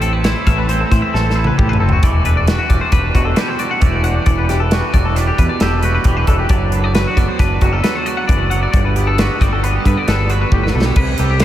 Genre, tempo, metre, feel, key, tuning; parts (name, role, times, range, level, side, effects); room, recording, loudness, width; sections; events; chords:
math rock and midwest emo; 134 BPM; 5/4; straight; G major; A4 = 440 Hz
twangy electric guitar; accompaniment; 0.0-11.4 s; G2 to B4; -21 LUFS; right 4 dB; wide subtle chorus
twangy electric guitar; arpeggios; 0.0-11.4 s; F#4 to F#5; -20 LUFS; left 4 dB; lush chorus, diffuse ambient delay
growling fingered electric bass; bass; 0.0-11.4 s; E1 to A2; -17 LUFS; equal; overdrive
modern studio drum kit; drums; 0.0-11.4 s; crash cymbal, hi-hat, kick drum, snare drum, toms; -17 LUFS; equal
moderate huge ambient reverb, RT60 6.9 s; dreamy mix soaked in reverb; -13 LUFS; side -12 dB against mid
0.0-11.0 A section
drum fill 1.1-2.0, 10.5-11.0
0.0 Am; 2.0 Em9; 6.5 Bm7/F#; 8.7 Gmaj7